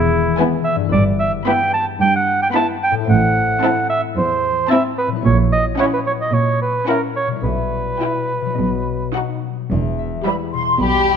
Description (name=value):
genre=cinematic, playful, whimsical film cue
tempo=110 BPM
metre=4/4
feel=straight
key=E minor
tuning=A4 = 440 Hz
part: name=dark cor anglais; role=second line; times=0.0-9.1 s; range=E4 to A5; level=-19 LUFS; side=right 3 dB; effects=none
part: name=concert harp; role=arpeggios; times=0.0-11.2 s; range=E2 to E5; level=-24 LUFS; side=left 11 dB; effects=none
part: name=dark studio cello section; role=bass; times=0.0-11.2 s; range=E2 to B2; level=-21 LUFS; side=right 3 dB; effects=none
part: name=rich studio double bass section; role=bass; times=0.0-11.2 s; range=E1 to B1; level=-23 LUFS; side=right 2 dB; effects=none
part: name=warm studio violin section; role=melody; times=0.4-11.2 s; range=G4 to B5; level=-23 LUFS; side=left 5 dB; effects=none
part: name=warm studio violin section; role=second line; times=0.4-10.7 s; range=E4 to E5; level=-26 LUFS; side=left 3 dB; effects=none
part: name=warm studio viola section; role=accompaniment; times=0.4-10.7 s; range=G3 to G4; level=-23 LUFS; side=right 1 dB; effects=none
part: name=large flute ensemble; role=second line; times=10.3-11.2 s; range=B5 to C6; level=-19 LUFS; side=equal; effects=none
room=moderate concert hall reverb, RT60 2.1 s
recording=none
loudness=-15 LUFS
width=side -7 dB against mid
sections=0.0-9.7 A section; 9.7-11.2 B section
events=none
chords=0.0 E; 0.9 Em/G; 3.1 Am; 5.2 F#7/A#; 7.5 Em/B; 8.6 B; 9.7 Em